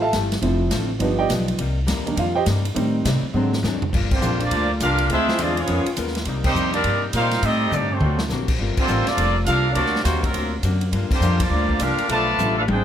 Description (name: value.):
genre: jazz, big band swing.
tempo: 206 BPM.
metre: 4/4.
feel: swing 63% on 8ths.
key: G minor.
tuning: A4 = 441 Hz.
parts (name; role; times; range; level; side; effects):
archtop guitar, miked and amplified; accompaniment; 0.0-12.8 s; G2 to A#4; -30 LUFS; left 6 dB; none.
warm baby grand piano; accompaniment; 0.0-3.6 s; D3 to A5; -22 LUFS; right 3 dB; none.
upright bass; bass; 0.0-12.8 s; F1 to C3; -23 LUFS; equal; none.
swinging big-band drum kit; drums; 0.1-12.8 s; crash cymbal, hi-hat, kick drum, ride cymbal, snare drum, toms; -26 LUFS; equal; none.
warm saxophone section; sustained chords; 3.9-12.8 s; C3 to F4; -32 LUFS; left 1 dB; none.
clear trumpet section; melody; 4.1-12.8 s; F#3 to A5; -22 LUFS; equal; none.
bright trombone section; second line; 4.1-12.8 s; C3 to G#4; -27 LUFS; right 4 dB; none.
room: light reverb.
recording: none.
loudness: -18 LUFS.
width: side -9 dB against mid.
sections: 0.0-3.9 A section; 3.9-12.8 B section.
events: grand piano solo 0.0-3.9; drum fill 3.3-3.9, 7.7-8.3, 12.4-12.8; band accent 4.1, 6.4, 8.7, 11.1.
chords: 0.4 Dm7; 1.0 G7b13; 1.6 Cm7; 2.8 Am7b5; 3.3 Ab7#11; 3.9 Gm7; 5.1 Dm7b5; 5.7 C#13; 6.3 Cm7; 7.4 Am7b5; 8.0 D7b13; 8.6 Gm11; 9.8 D7alt; 10.9 Gm7; 12.1 Bm7b5.